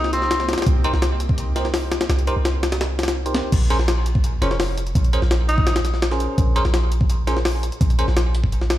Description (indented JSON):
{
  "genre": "drum and bass, jungle",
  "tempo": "168 BPM",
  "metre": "4/4",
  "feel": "straight",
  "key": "Bb dorian",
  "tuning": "A4 = 443 Hz",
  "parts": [
    { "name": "warm tenor saxophone", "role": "melody", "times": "0.0-0.5, 4.4-5.8 s", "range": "C4 to Eb4", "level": "-27 LUFS", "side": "left 1 dB", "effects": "vintage 12-bit sampler grit, dub echo" },
    { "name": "airy breathy pad", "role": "sustained chords", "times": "0.0-3.5 s", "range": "Bb3 to G4", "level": "-33 LUFS", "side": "equal", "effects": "chorus" },
    { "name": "warm 808-style bass", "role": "bass", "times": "0.0-8.8 s", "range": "F1 to C2", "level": "-21 LUFS", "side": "equal", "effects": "none" },
    { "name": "jungle sampler-style drum kit", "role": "drums", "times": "0.0-8.8 s", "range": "crash cymbal, hi-hat, kick drum, snare drum", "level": "-21 LUFS", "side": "left 1 dB", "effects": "none" },
    { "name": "bell-like tine electric piano", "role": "stabs", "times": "0.8-8.1 s", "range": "Db4 to C5", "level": "-27 LUFS", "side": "right 1 dB", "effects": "phaser, dub echo" }
  ],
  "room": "digital ambience",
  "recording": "played on a big sound system in a bare room, large studio reverb",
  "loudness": "-17 LUFS",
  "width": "side -14 dB against mid",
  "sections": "0.0-3.5 A section; 3.5-8.8 A section",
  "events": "drop 0.0-3.5, 3.5-8.8",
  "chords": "0.0 Cm7; 3.5 Bbm9"
}